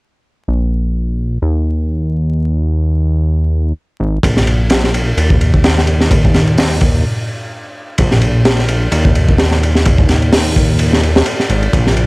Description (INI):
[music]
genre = breakbeat, breaks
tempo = 128 BPM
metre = 4/4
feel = swing 56% on 16ths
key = unclear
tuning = A4 = 441 Hz
[part]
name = fat analog bass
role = bass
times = 0.5-12.1 s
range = Ab1 to Eb2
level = -14 LUFS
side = equal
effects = tube saturation
[part]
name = crunchy breakbeat drum kit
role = drums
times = 4.2-12.1 s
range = hi-hat, kick drum, ride cymbal, snare drum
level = -12 LUFS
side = equal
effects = none
[sound]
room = little or no reverb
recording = vinyl crackle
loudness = -11 LUFS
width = side -26 dB against mid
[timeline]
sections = 0.5-8.0 A section; 8.0-12.1 B section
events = stop 7.0-8.0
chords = none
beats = | 0.48 0.95 1.42 1.89 | 2.36 2.83 3.30 3.77 | 4.24 4.70 5.17 5.64 | 6.11 6.58 7.05 7.52 | 7.99 8.45 8.92 9.39 | 9.86 10.33 10.80 11.27 | 11.73